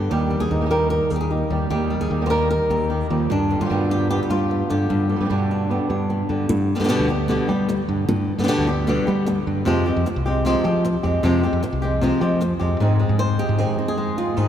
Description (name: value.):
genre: flamenco.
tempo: 151 BPM.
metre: 4/4.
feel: straight.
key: G phrygian dominant.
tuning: A4 = 440 Hz.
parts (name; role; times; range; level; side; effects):
flamenco guitar; melody; 0.0-14.5 s; G2 to C5; -21 LUFS; equal; none.
flamenco guitar; stabs; 0.0-6.5, 12.8-14.5 s; B2 to Ab4; -28 LUFS; right 3 dB; none.
modern bright fingered electric bass; bass; 0.0-14.5 s; C2 to G3; -22 LUFS; equal; none.
room: wet cathedral reverb, RT60 6.1 s.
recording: recorded in a church or concert hall.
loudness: -18 LUFS.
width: side -10 dB against mid.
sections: 0.0-6.5 A section; 6.5-12.8 B section; 12.8-14.5 C section.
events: none.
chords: 0.1 Eb; 3.3 G; 9.7 Fmadd9; 12.8 Ab.